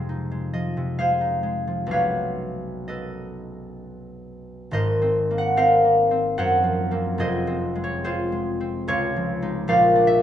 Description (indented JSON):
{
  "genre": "classical, solo harp piece",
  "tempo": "62-76 BPM",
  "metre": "3/4",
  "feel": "rubato",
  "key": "unclear",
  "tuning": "A4 = 441 Hz",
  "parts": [
    { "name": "concert harp", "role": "solo", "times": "0.0-10.2 s", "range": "F1 to C6", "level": "-20 LUFS", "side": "equal", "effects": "none" }
  ],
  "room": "moderate recital hall reverb, RT60 1.6 s",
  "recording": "nothing above 10.7 kHz",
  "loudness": "-20 LUFS",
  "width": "side -10 dB against mid",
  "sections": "0.0-4.7 A section; 4.7-10.2 B section",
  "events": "none",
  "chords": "0.0 Fm7; 1.9 Cb9; 4.7 Ab13; 6.4 Gbmaj7#11; 7.2 Fm7; 8.9 Dbadd9; 9.7 Bb9",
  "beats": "0.08 0.97 | 1.90 2.86 3.79 | 4.71 5.56 6.37 | 7.18 8.03 8.87 | 9.67"
}